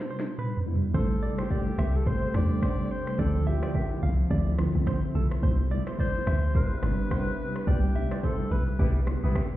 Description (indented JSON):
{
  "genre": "afrobeats",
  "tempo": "107 BPM",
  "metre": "4/4",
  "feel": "swing 58% on 16ths",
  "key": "C major",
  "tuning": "A4 = 440 Hz",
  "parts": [
    { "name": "breathy alto saxophone", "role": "melody", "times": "0.0-9.1 s", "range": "G4 to D5", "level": "-36 LUFS", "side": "left 1 dB", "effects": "digital delay" },
    { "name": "mellow tine electric piano", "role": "accompaniment", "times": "0.0-9.6 s", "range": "B2 to G4", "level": "-31 LUFS", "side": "equal", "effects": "medium stereo tremolo" },
    { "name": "afro-pop drum kit", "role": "drums", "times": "0.0-9.6 s", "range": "finger snaps, hi-hat, kick drum, rim click, shaker, snare drum, toms", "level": "-29 LUFS", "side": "equal", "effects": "none" },
    { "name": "direct-recorded clean electric guitar", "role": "riff", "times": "0.1-9.5 s", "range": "G4 to F5", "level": "-39 LUFS", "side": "right 4 dB", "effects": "digital delay" },
    { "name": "lush unison pad", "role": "sustained chords", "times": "0.9-9.6 s", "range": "C3 to G4", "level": "-37 LUFS", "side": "left 1 dB", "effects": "chorus" },
    { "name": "deep log drum bass", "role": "bass", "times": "0.9-9.3 s", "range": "G1 to E2", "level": "-26 LUFS", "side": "equal", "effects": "none" },
    { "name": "congas and bongos", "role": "percussion", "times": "0.9-9.5 s", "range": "none", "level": "-39 LUFS", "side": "left 2 dB", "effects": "none" },
    { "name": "warm horn section", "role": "second line", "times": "8.8-9.4 s", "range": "G3 to B4", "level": "-38 LUFS", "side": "left 2 dB", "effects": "none" }
  ],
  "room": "light reverb",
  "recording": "heard muffled through a wall, stone room reverb, EQ",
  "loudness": "-24 LUFS",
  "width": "side -15 dB against mid",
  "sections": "0.9-9.6 A section",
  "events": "break 0.0-0.9; drum fill 0.0-0.9; band accent 7.7-9.6",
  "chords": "0.0 Cmaj7; 0.9 Am7; 3.2 Dm9; 5.4 Cmaj7"
}